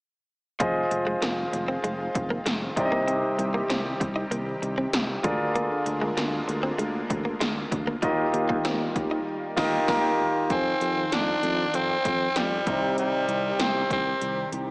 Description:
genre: 1980s-style pop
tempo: 97 BPM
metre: 4/4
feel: straight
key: F dorian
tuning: A4 = 445 Hz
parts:
  - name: clear concert grand piano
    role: accompaniment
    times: 0.6-14.7 s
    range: C3 to Ab5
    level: -27 LUFS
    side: equal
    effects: none
  - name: lush unison pad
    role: sustained chords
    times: 1.0-14.7 s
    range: D3 to G4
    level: -34 LUFS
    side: equal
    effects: chorus, phaser
  - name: direct-recorded clean electric guitar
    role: riff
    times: 0.6-9.2 s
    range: F3 to Eb4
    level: -32 LUFS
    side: equal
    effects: wide subtle chorus, tape echo
  - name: sustaining fretless electric bass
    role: bass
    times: 0.6-14.7 s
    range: F1 to F2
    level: -32 LUFS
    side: equal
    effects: none
  - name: 80s electronic pad drums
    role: drums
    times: 0.6-14.7 s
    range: crash cymbal, hi-hat, kick drum, snare drum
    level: -30 LUFS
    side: equal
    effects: gated reverb
  - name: raspy tenor saxophone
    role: melody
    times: 10.5-14.5 s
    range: G3 to D4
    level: -25 LUFS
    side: equal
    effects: none
room: moderate lush hall reverb, RT60 3.0 s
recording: small speaker sound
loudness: -23 LUFS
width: side -39 dB against mid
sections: 0.6-10.5 A section; 10.5-14.7 B section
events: band accent 9.3-10.5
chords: 0.6 Fm7; 2.8 Cm; 5.2 Bb7/D; 8.0 Ebadd9; 10.5 Fm7; 12.7 Cm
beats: | 0.60 1.22 1.84 2.46 | 3.08 3.70 4.32 4.93 | 5.55 6.17 6.79 7.41 | 8.03 8.65 9.27 9.88 | 10.50 11.12 11.74 12.36 | 12.98 13.60 14.21

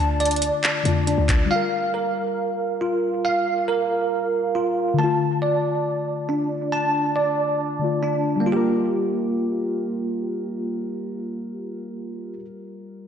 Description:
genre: hip hop, trap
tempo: 138 BPM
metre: 4/4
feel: half-time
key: G minor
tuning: A4 = 440 Hz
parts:
  - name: muted felt-like synth keys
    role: accompaniment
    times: 0.0-13.1 s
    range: D3 to Bb4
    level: -27 LUFS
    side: left 6 dB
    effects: chorus
  - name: bell-like tine electric piano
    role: arpeggios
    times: 0.0-12.4 s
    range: Bb3 to A5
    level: -22 LUFS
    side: right 2 dB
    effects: ensemble chorus, analog delay
  - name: short 808-style bass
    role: bass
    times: 0.0-1.5 s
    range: D2 to F2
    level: -23 LUFS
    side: equal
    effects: none
  - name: trap drum kit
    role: drums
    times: 0.2-1.4 s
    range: handclaps, hi-hat, kick drum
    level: -24 LUFS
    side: equal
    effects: none
room: wet lush hall reverb, RT60 1.9 s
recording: dreamy mix soaked in reverb, nothing above 11.0 kHz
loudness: -20 LUFS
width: side -8 dB against mid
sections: 0.0-8.5 A section; 8.5-11.9 B section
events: none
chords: 0.0 Dm; 1.5 Gm7; 5.0 Dm; 8.5 Gm7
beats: 0.20 0.64 1.07 | 1.51 1.94 2.38 2.81 | 3.25 3.68 4.12 4.55 | 4.99 5.42 5.85 6.29 | 6.72 7.16 7.59 8.03 | 8.46 8.90 9.33 9.77 | 10.20 10.64 11.07 11.51

